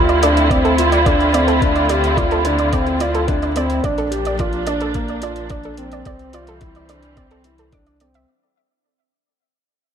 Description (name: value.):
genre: piano and strings electronica.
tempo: 108 BPM.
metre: 4/4.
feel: straight.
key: D minor.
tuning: A4 = 439 Hz.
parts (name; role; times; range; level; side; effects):
muted studio string section; sustained chords; 0.0-8.3 s; D3 to F4; -20 LUFS; right 1 dB; sidechain pumping.
felt-muted upright piano; riff; 0.0-8.2 s; Bb3 to G4; -20 LUFS; equal; ping-pong delay.
warm sub bass; bass; 0.0-8.3 s; Bb1 to D2; -23 LUFS; left 1 dB; sidechain pumping.
soft round pluck; arpeggios; 0.1-8.2 s; A4 to D6; -24 LUFS; right 3 dB; chorus, sidechain pumping, ping-pong delay.
electronic hi-hat; drums; 0.1-8.3 s; none; -34 LUFS; left 1 dB; overdrive.
electronic kick drum; drums; 0.5-7.8 s; none; -22 LUFS; left 1 dB; none.
room: moderate concert hall reverb, RT60 2.0 s, digital ambience.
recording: none.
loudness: -15 LUFS.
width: side -8 dB against mid.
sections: 0.0-8.3 A section.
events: drop 0.0-8.3; fade-out 0.0-8.3.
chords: 0.0 Dm7; 3.8 Bb; 6.1 C.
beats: 0.51 1.06 | 1.62 2.17 2.73 3.28 | 3.84 4.39 4.95 5.51 | 6.06 6.62 7.17 7.73.